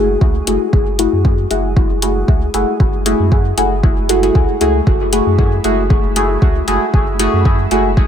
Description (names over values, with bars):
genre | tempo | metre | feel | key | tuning
dub techno | 116 BPM | 4/4 | swing 53% on 16ths | F# minor | A4 = 439 Hz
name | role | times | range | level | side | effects
deep mellow chord stab | stabs | 0.0-7.9 s | A3 to G#4 | -15 LUFS | equal | chorus, phaser, sidechain pumping, dub echo
pure sine sub bass | bass | 0.0-8.1 s | F#1 to F#2 | -19 LUFS | equal | sidechain pumping
flickering grainy texture | texture | 0.0-8.1 s | G#3 to G#4 | -27 LUFS | equal | built-in reverb, sidechain pumping
electronic kick drum | drums | 0.2-8.1 s | none | -13 LUFS | equal | overdrive
electronic hi-hat | drums | 0.5-7.8 s | none | -20 LUFS | left 3 dB | overdrive
room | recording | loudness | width
little or no reverb | none | -12 LUFS | side -9 dB against mid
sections
0.0-8.1 A section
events
none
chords
0.0 F#m9